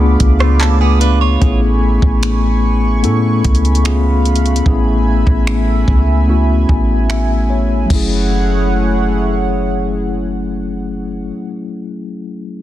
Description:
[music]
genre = contemporary R&B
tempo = 74 BPM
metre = 4/4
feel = straight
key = F# minor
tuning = A4 = 440 Hz
[part]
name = mellow tine electric piano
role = accompaniment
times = 0.0-12.6 s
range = F#3 to G#5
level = -18 LUFS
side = left 3 dB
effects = fast stereo tremolo
[part]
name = chorused pulse-width pad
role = sustained chords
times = 0.0-11.3 s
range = A3 to D6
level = -21 LUFS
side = right 1 dB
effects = sidechain pumping
[part]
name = clean 808-style bass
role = bass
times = 0.0-11.3 s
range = F#1 to A2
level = -14 LUFS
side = equal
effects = none
[part]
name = smooth R&B drum kit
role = drums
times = 0.2-8.1 s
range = crash cymbal, finger snaps, handclaps, hi-hat, kick drum, rim click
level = -16 LUFS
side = equal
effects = soft clipping on snare
[part]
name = direct-recorded clean electric guitar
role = arpeggios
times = 0.4-1.6 s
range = A3 to C#5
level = -21 LUFS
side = right 8 dB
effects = phaser, ping-pong delay
[sound]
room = little or no reverb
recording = dense, heavily limited modern master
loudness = -12 LUFS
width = side -13 dB against mid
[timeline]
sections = 0.0-1.4 A section; 1.4-7.9 B section; 7.9-11.1 C section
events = tine electric piano fill 6.3-7.9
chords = 0.0 C#7b9b13; 1.4 Amaj9; 3.8 C#7b13; 4.7 F#m11/A; 7.9 F#m9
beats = 0.60 | 1.41 2.23 3.04 3.85 | 4.66 5.47 6.28 7.09 | 7.90 8.71 9.52 10.33

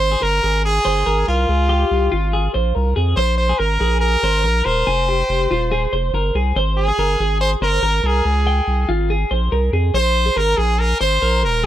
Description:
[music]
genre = jangly indie pop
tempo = 142 BPM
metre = 4/4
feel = straight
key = unclear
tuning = A4 = 441 Hz
[part]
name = brilliant trumpet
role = melody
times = 0.0-11.7 s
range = F4 to C5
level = -20 LUFS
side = equal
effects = tape echo
[part]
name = twelve-string electric guitar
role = arpeggios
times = 0.0-11.7 s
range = F4 to G5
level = -22 LUFS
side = equal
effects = none
[part]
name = saturated sub bass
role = bass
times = 0.0-11.7 s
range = Eb1 to F2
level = -19 LUFS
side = equal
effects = none
[sound]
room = studio reverb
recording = dry, close 1970s-style studio recording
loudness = -15 LUFS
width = side -12 dB against mid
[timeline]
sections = 0.0-11.7 A section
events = none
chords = 0.0 Abadd9; 1.5 Dbmaj7; 3.2 Bbsus2; 4.9 Fmadd9; 6.6 Abadd9; 8.3 Dbmaj7; 9.9 Bbsus2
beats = 0.23 0.65 1.07 | 1.49 1.92 2.34 2.76 | 3.18 3.60 4.03 4.45 | 4.87 5.29 5.72 6.14 | 6.56 6.99 7.41 7.83 | 8.26 8.68 9.10 9.53 | 9.95 10.37 10.80 11.22 | 11.64

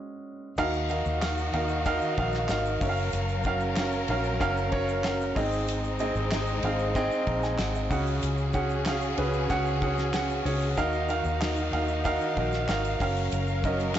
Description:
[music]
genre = piano-driven pop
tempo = 94 BPM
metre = 4/4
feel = straight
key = unclear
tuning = A4 = 440 Hz
[part]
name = warm baby grand piano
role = accompaniment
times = 0.0-14.0 s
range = G#2 to A#5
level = -28 LUFS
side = right 2 dB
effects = none
[part]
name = warm studio string section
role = sustained chords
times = 0.6-14.0 s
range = C#3 to E#5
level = -34 LUFS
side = left 3 dB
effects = none
[part]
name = vintage muted fingered electric bass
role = bass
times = 0.6-14.0 s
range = F#1 to D#2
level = -30 LUFS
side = left 1 dB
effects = none
[part]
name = damped 70s drum kit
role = drums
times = 0.6-14.0 s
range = crash cymbal, handclaps, hi-hat, kick drum, ride cymbal, snare drum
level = -34 LUFS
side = left 1 dB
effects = none
[part]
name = tube shaker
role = percussion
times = 0.6-14.0 s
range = none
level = -54 LUFS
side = left 13 dB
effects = none
[sound]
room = moderate large studio reverb, RT60 0.9 s, small room reverb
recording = blown-out, overdriven recording, overdrive, nothing above 7.9 kHz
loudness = -25 LUFS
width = side -11 dB against mid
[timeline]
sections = 0.6-14.0 A section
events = stop 0.0-0.6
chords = 0.0 C#sus4; 0.6 D#madd9; 2.8 F#maj7; 5.4 G#; 7.9 C#sus4; 10.8 D#madd9; 13.0 F#maj7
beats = | 0.59 1.23 1.86 2.50 | 3.14 3.77 4.41 5.04 | 5.68 6.32 6.96 7.59 | 8.23 8.86 9.50 10.14 | 10.77 11.41 12.04 12.68 | 13.32 13.95

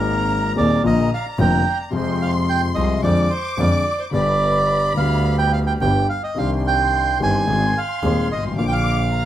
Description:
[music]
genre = tango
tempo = 109 BPM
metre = 4/4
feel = rubato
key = unclear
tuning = A4 = 440 Hz
[part]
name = bandoneon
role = melody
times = 0.0-9.3 s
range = Bb4 to Ab5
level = -21 LUFS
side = right 3 dB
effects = tape echo
[part]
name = warm studio violin section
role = second line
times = 0.0-9.3 s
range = Bb5 to D6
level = -30 LUFS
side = left 3 dB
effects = none
[part]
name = warm concert grand piano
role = accompaniment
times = 0.0-9.3 s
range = Eb1 to Ab4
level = -21 LUFS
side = left 3 dB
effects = none
[part]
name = rich double bass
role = bass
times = 0.0-9.3 s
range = F1 to F2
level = -23 LUFS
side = right 2 dB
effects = none
[sound]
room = moderate studio ambience, RT60 0.5 s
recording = rough home demo mix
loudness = -17 LUFS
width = side -12 dB against mid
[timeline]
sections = 0.0-9.3 A section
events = none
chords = 0.0 Abadd9; 0.8 Bb; 1.9 Fm; 3.0 Ddim/F; 4.1 G; 6.4 Cmadd9; 7.5 Ab; 8.6 Bb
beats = 0.29 0.84 1.39 | 1.93 2.48 3.03 3.58 | 4.13 4.69 5.25 5.81 | 6.37 6.93 7.49 8.04 | 8.59 9.13

